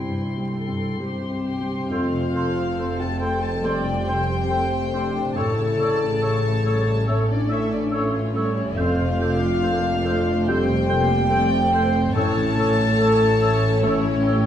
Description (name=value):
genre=cinematic, emotional film score for orchestra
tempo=70 BPM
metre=4/4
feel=rubato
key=F major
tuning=A4 = 442 Hz
part: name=warm studio violin section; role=melody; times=0.0-14.5 s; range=E4 to C6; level=-34 LUFS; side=left 4 dB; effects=none
part: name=warm clarinet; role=second line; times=0.0-14.4 s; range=E4 to A4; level=-32 LUFS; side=equal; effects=none
part: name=warm studio violin section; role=second line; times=0.0-14.5 s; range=C5 to A5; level=-27 LUFS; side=left 1 dB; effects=none
part: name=warm grand piano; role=accompaniment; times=0.0-14.5 s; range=C2 to E5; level=-29 LUFS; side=left 1 dB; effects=none
part: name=warm studio viola section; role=accompaniment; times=0.0-14.5 s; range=C#3 to A4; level=-28 LUFS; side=right 1 dB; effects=none
part: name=concert harp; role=arpeggios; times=0.0-14.5 s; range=F2 to G5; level=-30 LUFS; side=left 2 dB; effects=none
part: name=warm studio cello section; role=bass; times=0.1-14.5 s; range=F2 to C3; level=-27 LUFS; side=right 1 dB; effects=none
part: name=dark French horn section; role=sustained chords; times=1.0-14.5 s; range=C4 to A4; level=-26 LUFS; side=left 2 dB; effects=none
part: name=mellow hollow small flute group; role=second line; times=1.9-14.4 s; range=C6 to G6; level=-32 LUFS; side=left 1 dB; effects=none
part: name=warm oboe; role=second line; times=1.9-14.4 s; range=C5 to C#5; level=-34 LUFS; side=right 1 dB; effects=none
part: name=dark studio double bass section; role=bass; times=1.9-14.5 s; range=F1 to A1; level=-30 LUFS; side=right 2 dB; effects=none
room=wet recital hall reverb, RT60 1.5 s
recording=heard from further back in the room, vinyl crackle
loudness=-19 LUFS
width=side -10 dB against mid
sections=0.0-1.9 A section; 1.9-14.5 B section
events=none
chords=0.0 C; 1.9 Fadd9; 5.4 A; 8.8 Fadd9; 12.2 A